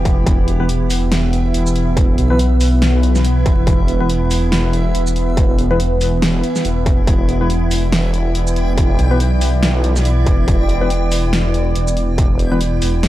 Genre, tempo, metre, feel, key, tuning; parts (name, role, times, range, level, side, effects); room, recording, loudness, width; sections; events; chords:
deep dubstep; 141 BPM; 4/4; swing 57% on 16ths, half-time; E minor; A4 = 445 Hz
deep dark ambient pad; sustained chords; 0.0-13.1 s; E3 to D5; -20 LUFS; right 1 dB; chorus, built-in reverb
dark detuned saw bass; bass; 0.0-13.1 s; E1 to B1; -16 LUFS; equal; tube saturation
backwards swelling texture; texture; 0.0-13.1 s; E4 to G5; -28 LUFS; equal; built-in reverb
deep house drum kit; drums; 0.1-13.1 s; hi-hat, shaker, snare drum; -22 LUFS; equal
electronic kick drum; drums; 0.1-12.3 s; -15 LUFS; equal; distortion
percussive organ stab; stabs; 0.6-12.6 s; E3 to B4; -23 LUFS; left 2 dB; wide subtle chorus, dub echo
little or no reverb; dry, gritty hardware recording, transformer saturation, vinyl crackle; -13 LUFS; side -15 dB against mid
0.0-13.1 A section
0.0 E5